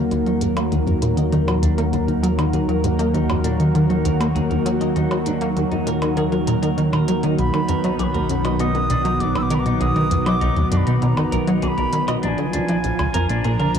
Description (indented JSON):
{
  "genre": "ambient, sequencer-driven space music",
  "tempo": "99 BPM",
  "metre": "4/4",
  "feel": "straight",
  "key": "Eb harmonic minor",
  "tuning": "A4 = 440 Hz",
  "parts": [
    { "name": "lush unison pad", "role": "sustained chords", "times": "0.0-13.8 s", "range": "Eb3 to Bb5", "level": "-22 LUFS", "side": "equal", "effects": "chorus" },
    { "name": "clean electric guitar", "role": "arpeggios", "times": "0.0-13.7 s", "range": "D4 to Eb5", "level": "-31 LUFS", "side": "moving between left 1 dB and right 5 dB", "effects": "auto-pan, tape echo" },
    { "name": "plucky analog bass", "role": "riff", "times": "0.0-13.8 s", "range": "Bb1 to Bb3", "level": "-21 LUFS", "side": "equal", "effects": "lush chorus, tape echo" },
    { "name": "analog drone", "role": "bass", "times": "0.0-13.8 s", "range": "Bb1 to Eb2", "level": "-26 LUFS", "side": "equal", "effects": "chorus" },
    { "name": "electronic hi-hat and percussion blips", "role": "percussion", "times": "0.1-13.8 s", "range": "none", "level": "-32 LUFS", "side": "equal", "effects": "tape echo" },
    { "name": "bright wooden flute", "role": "melody", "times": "7.4-13.8 s", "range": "Ab5 to Fb6", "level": "-25 LUFS", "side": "equal", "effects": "tape echo" }
  ],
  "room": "moderate plate reverb, RT60 3.5 s",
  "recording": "dark, warm production",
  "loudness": "-17 LUFS",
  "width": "side -8 dB against mid",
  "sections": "0.0-13.8 A section",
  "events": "fade-in on clean electric guitar 0.0-13.8",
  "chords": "0.0 Ebm; 7.4 B; 12.2 Bb"
}